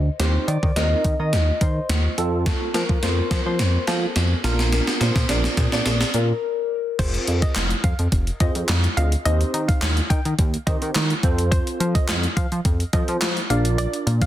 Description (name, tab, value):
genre	dance-pop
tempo	106 BPM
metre	4/4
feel	straight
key	unclear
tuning	A4 = 440 Hz
part	concert harp	melody	0.0-8.3 s	A4 to Eb5	-27 LUFS	left 4 dB	dub echo
part	chorused synth bass	bass	0.0-14.2 s	F1 to F3	-22 LUFS	equal	sidechain pumping
part	tine electric piano	accompaniment	0.2-14.3 s	C4 to Eb5	-28 LUFS	right 3 dB	ensemble chorus
part	gated 80s digital drum machine	drums	0.2-14.3 s	crash cymbal, handclaps, hi-hat, kick drum, snare drum	-22 LUFS	equal	gated reverb, gated reverb snare, overdrive
part	hollow square pluck	melody	7.0-14.3 s	C5 to G5	-31 LUFS	left 1 dB	chorus, sidechain pumping, dub echo
room	digital ambience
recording	dense, heavily limited modern master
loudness	-19 LUFS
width	side -12 dB against mid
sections	0.0-7.0 A section; 7.0-14.3 B section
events	build-up 0.0-7.0; drum fill 0.0-6.4; break 6.4-7.0; drop 7.0-14.3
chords	0.2 Cm/Eb; 2.2 F; 4.4 Bb; 7.0 Fm; 9.3 Cm/Eb; 11.2 F; 13.5 Bb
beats	| 0.20 0.76 1.33 1.90 | 2.46 3.03 3.59 4.16 | 4.73 5.29 5.86 6.42 | 6.99 7.56 8.12 8.69 | 9.26 9.82 10.39 10.95 | 11.52 12.09 12.65 13.22 | 13.78